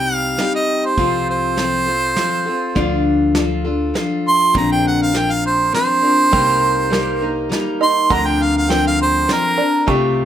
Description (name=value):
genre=acoustic folk duo or small band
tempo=101 BPM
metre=3/4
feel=straight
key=unclear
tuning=A4 = 440 Hz
part: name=bright harmonica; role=melody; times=0.0-9.9 s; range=Bb4 to C6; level=-16 LUFS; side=right 2 dB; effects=plate reverb
part: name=picked steel-string acoustic guitar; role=accompaniment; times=0.0-10.2 s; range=Bb2 to Bb4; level=-19 LUFS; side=left 3 dB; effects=none
part: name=upright bass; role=bass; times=0.0-10.2 s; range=Bb1 to D2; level=-24 LUFS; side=right 1 dB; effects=none
part: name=soft brush drum kit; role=drums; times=0.4-10.0 s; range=hi-hat, kick drum, snare drum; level=-24 LUFS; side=right 1 dB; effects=none
part: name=open-back banjo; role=arpeggios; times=6.3-10.2 s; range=D3 to Eb4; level=-24 LUFS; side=right 7 dB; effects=none
room=moderate studio reverb, RT60 0.5 s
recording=none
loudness=-14 LUFS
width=side -10 dB against mid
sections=0.0-10.2 A section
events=harmonica solo 0.0-10.2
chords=0.0 Cm; 1.0 F/C; 2.8 Dm; 4.5 Bbadd9; 6.3 Cm7; 8.1 Bbadd9/D